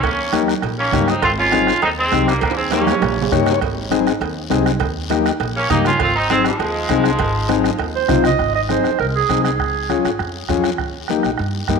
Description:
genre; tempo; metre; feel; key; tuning
latin, cumbia; 201 BPM; 4/4; straight; Ab major; A4 = 441 Hz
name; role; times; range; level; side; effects
clear saxophone section; melody; 0.0-3.3, 5.6-8.1 s; F3 to F4; -18 LUFS; right 1 dB; none
upright bass; bass; 0.0-11.8 s; Ab1 to G2; -24 LUFS; right 1 dB; none
bombo; percussion; 0.0-11.8 s; none; -25 LUFS; right 7 dB; none
congas; percussion; 0.0-11.8 s; none; -26 LUFS; right 10 dB; none
cowbell and timbales; percussion; 0.0-8.2 s; none; -27 LUFS; right 13 dB; none
guiro; percussion; 0.0-11.8 s; none; -32 LUFS; left 10 dB; none
overdriven combo organ; accompaniment; 0.3-11.8 s; Bb3 to Db5; -20 LUFS; left 9 dB; none
clear clarinet; second line; 8.0-10.3 s; Ab4 to Eb5; -19 LUFS; right 8 dB; none
room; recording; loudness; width
moderate echo chamber reverb, RT60 1.8 s, studio ambience; 1960s-style stereo with parts hard left and right; -15 LUFS; side -5 dB against mid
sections
0.0-8.4 A section; 8.4-11.8 B section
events
drum fill 2.4-3.6; transistor combo organ fill 3.2-3.6; clarinet solo 8.4-11.8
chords
0.0 Eb7; 1.2 Ab; 2.4 Eb7; 3.6 Ab; 4.8 Eb7; 6.0 Ab; 9.6 Db; 10.8 Eb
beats
| 0.04 0.34 0.64 0.94 | 1.23 1.53 1.83 2.13 | 2.43 2.73 3.02 3.32 | 3.62 3.92 4.22 4.52 | 4.82 5.11 5.41 5.71 | 6.01 6.31 6.61 6.91 | 7.20 7.50 7.80 8.10 | 8.40 8.70 9.00 9.30 | 9.60 9.90 10.20 10.49 | 10.79 11.09 11.39 11.69

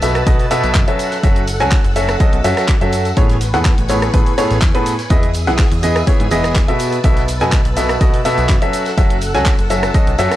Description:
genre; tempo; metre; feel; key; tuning
piano house; 124 BPM; 4/4; straight; F# dorian; A4 = 440 Hz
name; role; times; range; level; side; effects
string machine, violins; sustained chords; 0.0-10.4 s; G#4 to E6; -25 LUFS; equal; ensemble chorus, sidechain pumping
clear baby grand piano; riff; 0.0-10.4 s; A2 to G#5; -17 LUFS; equal; sidechain pumping, analog delay
plucky analog bass; bass; 0.0-10.3 s; E1 to B2; -20 LUFS; equal; tube saturation, sidechain pumping
house drum kit; drums; 0.0-10.4 s; handclaps, hi-hat, rim click, shaker; -24 LUFS; right 1 dB; none
loose indie drum kit; drums; 0.0-10.4 s; hi-hat, snare drum; -34 LUFS; right 2 dB; none
tambourine; percussion; 0.0-10.4 s; none; -34 LUFS; equal; none
electronic kick drum; drums; 0.3-10.0 s; none; -14 LUFS; equal; none
room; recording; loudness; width
small room reverb; cassette tape; -12 LUFS; side -14 dB against mid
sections
0.0-10.4 A section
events
none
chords
0.0 B7sus4; 1.0 F#m7; 3.2 Amaj9; 5.1 Emaj7; 6.8 B7sus4; 8.7 F#m7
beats
0.27 0.75 | 1.23 1.72 2.20 2.69 | 3.17 3.65 4.14 4.62 | 5.11 5.59 6.07 6.56 | 7.04 7.53 8.01 8.49 | 8.98 9.46 9.94

